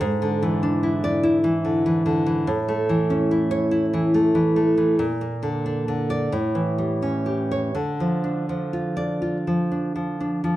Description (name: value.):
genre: romantic piece for solo classical guitar.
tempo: 41-49 BPM (dotted quarters).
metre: 6/8.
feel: rubato.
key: D minor.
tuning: A4 = 440 Hz.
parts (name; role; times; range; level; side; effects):
nylon-string guitar; solo; 0.0-10.6 s; G#2 to D5; -20 LUFS; equal; none.
room: moderate recital hall reverb, RT60 1.5 s.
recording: dark, warm production.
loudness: -20 LUFS.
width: side -15 dB against mid.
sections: 0.0-10.6 A section.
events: none.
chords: 0.0 E7/G#; 2.5 A; 5.0 Bb; 6.3 A7; 7.8 Dm.